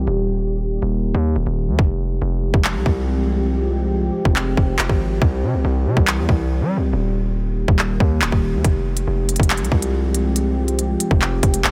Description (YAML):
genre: hip hop, drill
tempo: 140 BPM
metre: 4/4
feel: half-time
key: F minor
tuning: A4 = 440 Hz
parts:
  - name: dark analog pad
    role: sustained chords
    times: 0.0-11.7 s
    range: Eb3 to G4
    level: -26 LUFS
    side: equal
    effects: chorus, low-pass filter
  - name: hard-hitting 808-style bass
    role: bass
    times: 0.0-11.7 s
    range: Eb1 to G3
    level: -23 LUFS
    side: equal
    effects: none
  - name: drill drum kit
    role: drums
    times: 1.8-11.7 s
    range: handclaps, hi-hat, kick drum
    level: -21 LUFS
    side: equal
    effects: none
room: little or no reverb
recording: none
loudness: -19 LUFS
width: mono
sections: 0.0-1.8 A section; 1.8-11.7 B section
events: filter sweep on analog synth pad 0.0-1.8; hi-hats muted 1.8-8.6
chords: 0.1 Eb; 1.8 Fmadd9; 5.2 C; 6.9 Eb; 8.6 Fmadd9